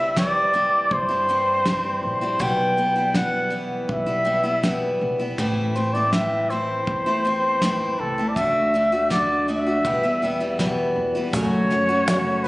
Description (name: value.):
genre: acoustic folk duo or small band.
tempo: 81 BPM.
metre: 4/4.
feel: straight.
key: E minor.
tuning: A4 = 440 Hz.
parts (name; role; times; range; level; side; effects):
warm flugelhorn; melody; 0.0-12.5 s; A4 to G5; -21 LUFS; equal; none.
picked steel-string acoustic guitar; accompaniment; 0.0-12.5 s; E2 to F#4; -25 LUFS; equal; none.
upright bass; bass; 0.0-12.5 s; A1 to G2; -31 LUFS; equal; none.
soft brush drum kit; drums; 0.2-12.5 s; kick drum, snare drum; -26 LUFS; equal; none.
felt-muted upright piano; arpeggios; 11.3-12.5 s; A3 to F#4; -25 LUFS; right 1 dB; none.
cajon; percussion; 11.3-12.3 s; none; -30 LUFS; equal; none.
room: moderate concert hall reverb, RT60 2.0 s.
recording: recorded on a phone in the room, club reverb, nothing above 10.7 kHz.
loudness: -19 LUFS.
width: side -21 dB against mid.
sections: 0.0-11.3 A section; 11.3-12.5 B section.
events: none.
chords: 0.0 C; 2.4 Em/B; 5.4 Am; 8.4 D; 9.8 Em; 11.3 F#m.